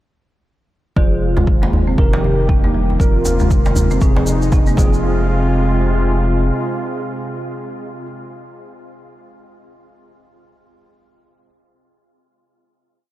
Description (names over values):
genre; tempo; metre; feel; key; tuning
afro house; 118 BPM; 4/4; swing 58% on 16ths; F minor; A4 = 440 Hz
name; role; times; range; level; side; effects
warm analog pad; sustained chords; 1.0-8.1 s; C3 to G4; -22 LUFS; left 1 dB; lush chorus, sidechain pumping
folk marimba with soft mallets; arpeggios; 1.0-5.3 s; C3 to Eb4; -23 LUFS; equal; sidechain pumping, low-pass filter, diffuse ambient delay
tine electric piano; stabs; 1.0-8.1 s; C4 to C5; -24 LUFS; right 2 dB; ensemble chorus, sidechain pumping, low-pass filter, diffuse ambient delay
round analog bass; bass; 1.0-6.5 s; F1; -19 LUFS; equal; sidechain pumping
electronic kick drum; drums; 1.0-4.9 s; none; -15 LUFS; equal; none
djembe; percussion; 1.0-4.9 s; none; -22 LUFS; equal; none
tube shaker; percussion; 3.0-5.0 s; none; -32 LUFS; equal; none
room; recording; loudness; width
light reverb, small room ambience; none; -13 LUFS; side -15 dB against mid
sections
1.0-5.0 breakdown; 5.0-9.1 final hit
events
filter sweep on analog synth pad 1.0-5.0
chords
1.0 Fm; 2.0 Eb/F; 3.0 Bbsus2/F; 4.8 Fm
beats
| 0.97 1.48 1.98 2.49 | 3.00 3.51 4.02 4.53 | 5.03 5.54 6.05 6.56 | 7.07 7.58